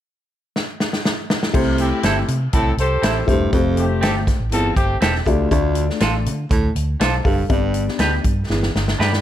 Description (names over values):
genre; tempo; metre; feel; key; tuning
uptempo 1960s-style soul; 121 BPM; 4/4; straight; C major; A4 = 440 Hz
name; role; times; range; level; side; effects
natural country drum kit; drums; 0.6-9.2 s; crash cymbal, hi-hat, kick drum, snare drum; -21 LUFS; equal; none
dark upright piano; accompaniment; 1.5-9.2 s; A3 to B5; -23 LUFS; left 7 dB; none
warm baritone saxophone; riff; 1.5-8.7 s; D2 to C3; -24 LUFS; right 4 dB; none
vintage muted fingered electric bass; bass; 1.5-9.2 s; E1 to D3; -22 LUFS; equal; none
warm horn section; second line; 1.8-5.0 s; A3 to C5; -23 LUFS; left 1 dB; none
semi-hollow electric guitar; stabs; 2.0-9.1 s; C4 to B4; -23 LUFS; right 4 dB; none
room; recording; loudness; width
light reverb, small room ambience; none; -16 LUFS; side -11 dB against mid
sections
0.0-1.5 A section; 1.5-9.2 B section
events
drum fill 0.6-1.5, 8.5-9.2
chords
0.0 N.C.; 1.5 C6; 3.5 Fadd9; 5.5 Dm; 7.5 G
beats
0.06 0.55 1.05 | 1.54 2.04 2.54 3.04 | 3.53 4.03 4.53 5.02 | 5.52 6.02 6.51 7.01 | 7.51 8.01 8.50 9.00